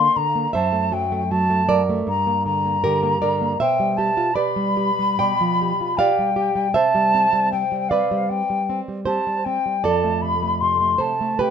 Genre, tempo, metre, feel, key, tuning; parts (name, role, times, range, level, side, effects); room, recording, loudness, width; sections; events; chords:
romantic duo for flute and classical guitar; 78 BPM; 4/4; rubato; C major from 3.6 s; A4 = 441 Hz
mellow hollow silver concert flute; melody; 0.0-11.5 s; F5 to C6; -20 LUFS; left 2 dB
nylon-string guitar; accompaniment; 0.0-11.5 s; F2 to G5; -21 LUFS; right 3 dB
light reverb; minimal, uncompressed stereo recording; -18 LUFS; side -7 dB against mid
0.0-11.5 A section
0.0 Gm (rootless); 0.5 F#m7b5; 2.1 Gm; 3.6 G7/B; 6.7 C; 9.8 F